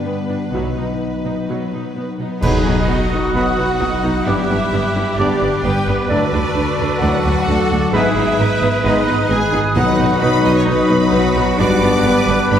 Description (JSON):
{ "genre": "cinematic, heroic adventure film score", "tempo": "131 BPM", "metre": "4/4", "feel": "straight", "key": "unclear", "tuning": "A4 = 441 Hz", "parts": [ { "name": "rich symphonic violin section", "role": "melody", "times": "0.0-12.6 s", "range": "B3 to D#5", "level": "-26 LUFS", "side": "left 1 dB", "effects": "none" }, { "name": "rich symphonic violin section", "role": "second line", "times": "0.0-12.6 s", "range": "F#4 to D#6", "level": "-25 LUFS", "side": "left 2 dB", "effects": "none" }, { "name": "mellow French horn section", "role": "sustained chords", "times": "0.0-12.6 s", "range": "A3 to D#4", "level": "-24 LUFS", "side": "left 2 dB", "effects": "none" }, { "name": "concert harp", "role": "arpeggios", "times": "0.0-12.6 s", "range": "G2 to A5", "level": "-23 LUFS", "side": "left 5 dB", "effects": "none" }, { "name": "rich symphonic viola section", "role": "accompaniment", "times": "0.1-12.6 s", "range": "F#3 to D#4", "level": "-24 LUFS", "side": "right 1 dB", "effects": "none" }, { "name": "rich symphonic cello section", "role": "bass", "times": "0.1-12.6 s", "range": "G2 to B4", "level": "-24 LUFS", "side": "right 2 dB", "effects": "none" }, { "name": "warm studio double bass section", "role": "bass", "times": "0.5-12.6 s", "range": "G1 to D2", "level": "-22 LUFS", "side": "right 2 dB", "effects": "none" }, { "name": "hollow flute section", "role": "second line", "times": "2.4-12.6 s", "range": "D6 to D#6", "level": "-26 LUFS", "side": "right 2 dB", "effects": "none" }, { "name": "mellow oboe", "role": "second line", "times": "2.4-12.6 s", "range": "A4 to B4", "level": "-26 LUFS", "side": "right 1 dB", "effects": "none" }, { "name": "warm clarinet", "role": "second line", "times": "2.4-12.6 s", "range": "D4 to G#4", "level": "-26 LUFS", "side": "right 2 dB", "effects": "none" }, { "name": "bright trombone section", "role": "sustained chords", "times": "2.4-12.6 s", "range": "G2 to G#3", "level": "-26 LUFS", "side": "right 3 dB", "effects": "none" }, { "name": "mellow trumpet section", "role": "stabs", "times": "2.4-12.6 s", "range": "B4 to D5", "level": "-24 LUFS", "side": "equal", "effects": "none" }, { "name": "clash cymbals and concert bass drum", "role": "percussion", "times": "2.4-3.3 s", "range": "none", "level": "-24 LUFS", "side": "equal", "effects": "none" }, { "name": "timpani", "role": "percussion", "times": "2.4-3.1, 9.8-10.4 s", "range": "B2", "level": "-25 LUFS", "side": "left 2 dB", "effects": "none" } ], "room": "wet scoring stage reverb, RT60 1.6 s", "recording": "heard from further back in the room", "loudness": "-14 LUFS", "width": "side -9 dB against mid", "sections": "0.0-2.4 A section; 2.4-12.6 B section", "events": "band accent 2.4-2.9", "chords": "0.0 G; 0.5 B; 4.3 G; 6.1 D; 7.9 G#m; 9.8 B; 11.6 G" }